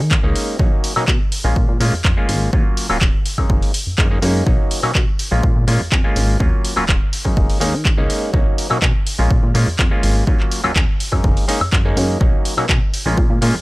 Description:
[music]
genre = filtered disco house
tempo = 124 BPM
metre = 4/4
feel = straight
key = F# major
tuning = A4 = 440 Hz
[part]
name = plucky analog bass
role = bass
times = 0.0-13.6 s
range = D#1 to D#3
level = -19 LUFS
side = equal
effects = tube saturation, sidechain pumping, low-pass filter
[part]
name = electronic kick drum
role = drums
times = 0.1-13.3 s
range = none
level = -17 LUFS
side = equal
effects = none
[part]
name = punchy analog drum machine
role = drums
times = 0.1-13.5 s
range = handclaps, hi-hat, woodblock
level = -22 LUFS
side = left 1 dB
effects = sidechain pumping on hats, sidechain pumping on cymbals, sidechain pumping on perc
[part]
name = overdriven clav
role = accompaniment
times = 0.2-13.6 s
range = F#3 to E#4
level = -22 LUFS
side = equal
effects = phaser, sidechain pumping, low-pass filter
[sound]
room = little or no reverb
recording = dry, gritty hardware recording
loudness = -14 LUFS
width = side -21 dB against mid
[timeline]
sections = 0.0-13.6 A section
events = none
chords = 0.0 F#69 (rootless); 0.6 Bmaj9; 1.3 A#m7; 2.5 D#m9; 3.3 F#69; 4.5 Bmaj9; 5.2 A#m7; 6.4 D#m9; 7.1 F#69; 8.3 Bmaj9; 9.1 A#m7; 10.3 D#m9; 11.0 F#69; 12.2 Bmaj9; 12.9 A#m7

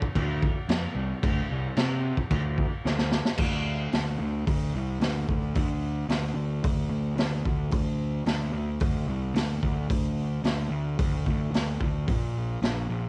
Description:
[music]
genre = garage rock duo or trio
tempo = 110 BPM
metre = 4/4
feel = straight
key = unclear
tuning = A4 = 440 Hz
[part]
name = raw garage drum kit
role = drums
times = 0.0-12.8 s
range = crash cymbal, hi-hat, kick drum, snare drum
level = -30 LUFS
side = equal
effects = none
[part]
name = fuzz picked electric bass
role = bass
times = 0.2-13.1 s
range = Bb1 to C3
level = -31 LUFS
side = equal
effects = overdrive
[sound]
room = little or no reverb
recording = home recording on cassette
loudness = -28 LUFS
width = mono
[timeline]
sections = 0.0-3.4 A section; 3.4-13.1 B section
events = drum fill 2.8-3.4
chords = none

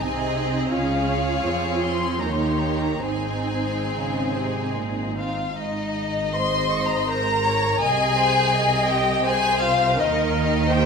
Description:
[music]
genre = classical, slow romantic movement for string orchestra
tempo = 68-87 BPM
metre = 3/4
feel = rubato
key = Ab major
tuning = A4 = 439 Hz
[part]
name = rich chamber violin section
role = melody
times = 0.0-10.9 s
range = Eb5 to Db6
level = -24 LUFS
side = left 3 dB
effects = none
[part]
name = rich chamber violin section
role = second line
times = 0.0-10.9 s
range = Eb4 to Eb5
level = -27 LUFS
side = left 2 dB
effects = none
[part]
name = rich symphonic viola section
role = accompaniment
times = 0.0-10.9 s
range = Bb3 to Eb5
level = -26 LUFS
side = equal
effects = none
[part]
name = rich symphonic cello section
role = bass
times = 0.0-10.9 s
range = Ab2 to F3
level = -30 LUFS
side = right 3 dB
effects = none
[part]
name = warm chamber double bass section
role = bass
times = 0.0-10.9 s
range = Ab1 to F2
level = -28 LUFS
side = right 4 dB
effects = none
[sound]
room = wet scoring stage reverb, RT60 1.8 s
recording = minimal, uncompressed stereo recording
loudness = -20 LUFS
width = side -5 dB against mid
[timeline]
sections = 0.0-5.6 A section; 5.6-10.9 B section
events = none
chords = 0.0 Ab; 0.7 Db; 2.2 Eb7; 3.1 Ab; 7.8 Ab/C; 10.0 Eb

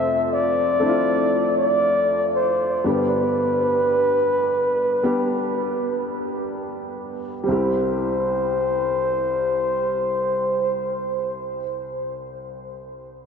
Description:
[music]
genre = pop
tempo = 46-61 BPM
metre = 4/4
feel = straight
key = C major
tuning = A4 = 438 Hz
[part]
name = warm flugelhorn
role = melody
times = 0.0-11.6 s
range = B4 to E5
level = -21 LUFS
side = equal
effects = diffuse ambient delay
[part]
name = warm grand piano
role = accompaniment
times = 0.0-13.3 s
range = C2 to G4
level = -25 LUFS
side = left 1 dB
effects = wide subtle chorus
[sound]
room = wet huge ambient reverb, RT60 7.7 s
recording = dreamy mix soaked in reverb, nothing above 7.8 kHz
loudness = -19 LUFS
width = side -6 dB against mid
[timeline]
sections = 0.0-7.5 A section; 7.5-12.6 B section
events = slowing down 0.0-7.5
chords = 0.0 F6; 2.8 G; 7.5 C

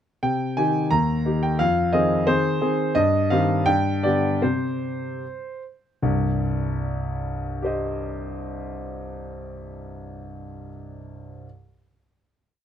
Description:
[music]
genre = classical-period piano sonatina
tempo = 74-88 BPM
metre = 2/4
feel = rubato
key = C minor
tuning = A4 = 440 Hz
[part]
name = warm grand piano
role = solo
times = 0.2-11.5 s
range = C2 to Bb5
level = -22 LUFS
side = equal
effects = none
[sound]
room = light reverb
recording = close, detailed microphones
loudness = -20 LUFS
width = side -9 dB against mid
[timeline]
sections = 0.2-6.0 A section; 6.0-9.2 final chord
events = slowing down 2.3-6.0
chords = 0.2 Cm; 0.9 Eb; 1.6 Fm7; 3.0 Cm/G; 3.7 G; 4.4 C5; 6.0 Cm

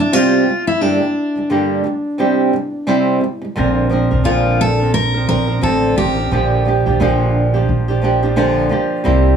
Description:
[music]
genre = acoustic pop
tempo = 87 BPM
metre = 4/4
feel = swing 60% on 16ths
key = unclear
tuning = A4 = 440 Hz
[part]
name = picked steel-string acoustic guitar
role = melody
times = 0.0-7.3 s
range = D4 to Bb4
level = -18 LUFS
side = left 1 dB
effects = none
[part]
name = flamenco guitar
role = accompaniment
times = 0.0-9.4 s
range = G2 to Bb4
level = -16 LUFS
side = right 2 dB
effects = none
[part]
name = upright bass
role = bass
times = 3.6-9.4 s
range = A1 to C2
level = -17 LUFS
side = right 1 dB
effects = none
[sound]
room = light reverb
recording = small room ambience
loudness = -13 LUFS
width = side -7 dB against mid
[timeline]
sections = 0.0-3.6 A section; 3.6-9.4 B section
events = none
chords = 0.0 C5; 0.8 Gm; 2.2 C; 3.6 Bbadd9; 6.3 Gm7/Bb

